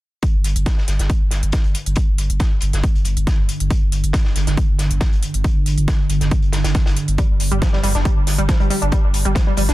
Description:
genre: driving peak-time techno.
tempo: 138 BPM.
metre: 4/4.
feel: straight.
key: unclear.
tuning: A4 = 439 Hz.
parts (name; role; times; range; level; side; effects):
deep dark ambient pad; drone; 1.8-9.7 s; G2 to D3; -26 LUFS; right 2 dB; chorus, built-in reverb, sidechain pumping.
electronic hi-hat; drums; 0.2-9.7 s; none; -28 LUFS; equal; overdrive.
electronic kick drum; drums; 0.2-9.4 s; none; -17 LUFS; equal; overdrive.
vintage drum kit; drums; 0.2-9.7 s; hi-hat, snare drum; -30 LUFS; left 1 dB; sidechain pumping on hats, high-pass filter on hats, high-pass filter on snare, high-pass filter on room.
saturated sub bass; bass; 0.3-9.7 s; G1; -20 LUFS; equal; tube saturation, sidechain pumping, low-pass filter.
analog pluck; riff; 7.2-9.7 s; F3 to D4; -22 LUFS; equal; chorus, overdrive, sidechain pumping, dub echo.
room: small room ambience.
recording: dense, heavily limited modern master.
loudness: -16 LUFS.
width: side -16 dB against mid.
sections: 0.2-9.7 A section.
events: none.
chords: 0.2 G5.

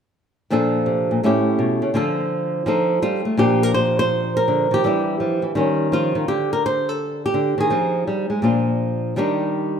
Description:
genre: solo jazz.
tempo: 167 BPM.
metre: 4/4.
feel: swing 65% on 8ths, rubato.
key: Bb major.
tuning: A4 = 439 Hz.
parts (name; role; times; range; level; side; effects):
flamenco guitar; solo; 0.5-9.8 s; A2 to C5; -18 LUFS; equal; none.
room: moderate scoring stage reverb, RT60 1.6 s.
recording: close, detailed microphones.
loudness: -18 LUFS.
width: side -7 dB against mid.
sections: 0.5-3.4 A section; 3.4-9.8 B section.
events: none.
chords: 0.5 Bbmaj7; 1.2 A7; 1.9 Dm7; 2.7 F7; 3.4 Bbadd9; 4.8 Em7; 5.6 Eb9; 6.3 D5; 7.7 Fm7; 8.4 Bb7; 9.2 Ebmaj7.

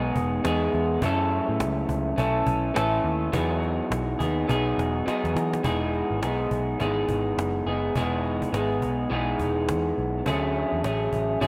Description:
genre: indie pop, bedroom pop.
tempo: 104 BPM.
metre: 4/4.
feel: swing 60% on 16ths.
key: E major.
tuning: A4 = 439 Hz.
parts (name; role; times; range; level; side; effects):
electric guitar through a small old amp; accompaniment; 0.0-11.5 s; F#2 to A4; -27 LUFS; equal; subtle chorus, warbly pitch drift.
vintage muted picked electric bass; bass; 0.0-11.5 s; E1 to E3; -32 LUFS; equal; none.
cajon; drums; 0.2-11.5 s; none; -35 LUFS; equal; none.
room: moderate lush hall reverb, RT60 1.9 s, small room ambience.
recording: rough home demo mix.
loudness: -26 LUFS.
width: mono.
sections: 0.0-5.6 A section; 5.6-11.5 B section.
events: drum fill 4.5-5.6.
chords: 0.0 Emaj7; 1.0 F#m7; 3.3 Emaj9; 10.3 Dmaj7#11.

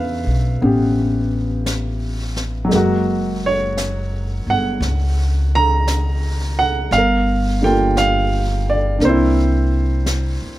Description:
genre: jazz ballad.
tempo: 57 BPM.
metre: 4/4.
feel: swing 67% on 8ths.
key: unclear.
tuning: A4 = 442 Hz.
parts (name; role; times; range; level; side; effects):
clear baby grand piano; accompaniment; 0.0-10.6 s; C#3 to A#5; -18 LUFS; right 1 dB; none.
upright bass; bass; 0.0-10.6 s; F#1 to E2; -19 LUFS; equal; none.
jazz brush drum kit; drums; 0.6-10.6 s; brushed snare drum, hi-hat, snare drum; -30 LUFS; left 1 dB; none.
room: little or no reverb.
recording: none.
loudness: -15 LUFS.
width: side -15 dB against mid.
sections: 0.0-10.6 A section.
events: none.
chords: 0.0 C#7alt; 2.7 F#add9; 6.9 Gm7; 9.0 C9.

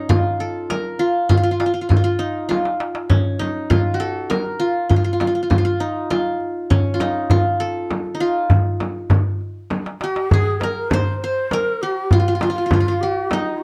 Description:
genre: Arabic maqam ensemble.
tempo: 100 BPM.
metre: 3/4.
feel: straight.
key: F maqam hijaz, F maqam bayati from 10.3 s.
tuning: A4 = 440 Hz.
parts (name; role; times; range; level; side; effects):
qanun; melody; 0.0-13.6 s; Db4 to C5; -23 LUFS; equal; none.
darbuka; percussion; 0.1-13.5 s; none; -22 LUFS; equal; none.
frame drum; percussion; 0.1-13.5 s; none; -25 LUFS; equal; none.
breathy bright low ney; second line; 10.0-13.6 s; Eb4 to Db5; -27 LUFS; equal; none.
room: moderate studio reverb, RT60 0.5 s.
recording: dark, warm production.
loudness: -19 LUFS.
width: mono.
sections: 0.0-10.3 A section; 10.3-13.6 B section.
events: drum fill 2.5-3.1, 9.7-10.3.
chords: none.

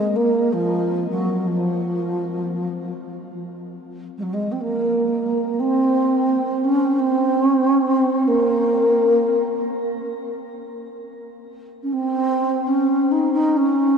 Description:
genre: world meditative.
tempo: free time.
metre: none.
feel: none.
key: unclear.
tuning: A4 = 440 Hz.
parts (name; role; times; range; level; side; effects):
breathy bass flute; melody; 0.0-14.0 s; F3 to Eb4; -18 LUFS; right 1 dB; ping-pong delay.
room: wet cathedral reverb, RT60 6.2 s.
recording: dark, warm production.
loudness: -18 LUFS.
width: side -6 dB against mid.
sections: 0.0-14.0 A section.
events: none.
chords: none.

